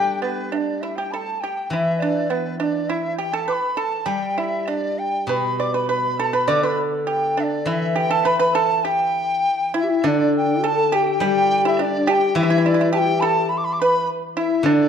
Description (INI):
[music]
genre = chinese traditional, Chinese chamber ensemble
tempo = 102 BPM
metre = 2/4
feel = rubato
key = G gong mode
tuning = A4 = 442 Hz
[part]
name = large dizi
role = melody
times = 0.0-14.9 s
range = B4 to D6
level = -22 LUFS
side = left 1 dB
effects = none
[part]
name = mellow low xiao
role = second line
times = 0.0-0.2, 9.7-14.9 s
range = D4 to B4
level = -22 LUFS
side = left 6 dB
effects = none
[part]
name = pipa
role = second line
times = 0.0-14.9 s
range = B3 to D5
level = -23 LUFS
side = right 5 dB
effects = none
[part]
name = steel-string zither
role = accompaniment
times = 0.0-14.9 s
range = B2 to G4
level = -25 LUFS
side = left 1 dB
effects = none
[sound]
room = wet recital hall reverb, RT60 1.4 s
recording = dark, warm production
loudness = -18 LUFS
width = side -7 dB against mid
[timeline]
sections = 0.5-10.1 A section; 10.1-14.9 B section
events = none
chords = none